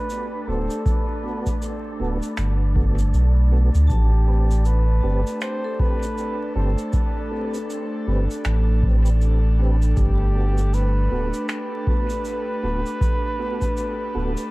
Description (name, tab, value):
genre	ambient dub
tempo	79 BPM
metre	4/4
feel	swing 60% on 16ths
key	unclear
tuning	A4 = 440 Hz
part	trumpet with bucket mute	melody	0.0-14.5 s	G4 to C5	-30 LUFS	right 1 dB	dub echo
part	airy breathy pad	sustained chords	0.0-14.5 s	A3 to A4	-31 LUFS	equal	chorus
part	wind-like tuned noise texture	texture	0.0-14.5 s	D4 to D5	-37 LUFS	right 1 dB	built-in reverb
part	shaker and finger snaps	drums	0.1-14.5 s	none	-35 LUFS	equal	dub echo
part	mellow tonewheel organ	stabs	0.5-14.3 s	B3 to B4	-33 LUFS	right 2 dB	chorus vibrato, slow rotary speaker, dub echo
part	warm sub bass	bass	0.5-14.3 s	D1 to D2	-18 LUFS	equal	none
part	electronic kick drum	drums	0.9-13.7 s	none	-22 LUFS	equal	none
part	vibraphone with hard mallets	arpeggios	3.9-10.0 s	A4 to A5	-37 LUFS	left 4 dB	dub echo
room	small room ambience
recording	dark, warm production, vinyl crackle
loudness	-19 LUFS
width	side -21 dB against mid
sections	0.0-14.5 A section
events	none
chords	0.0 Gmaj7; 3.9 Am7; 10.0 Gmaj7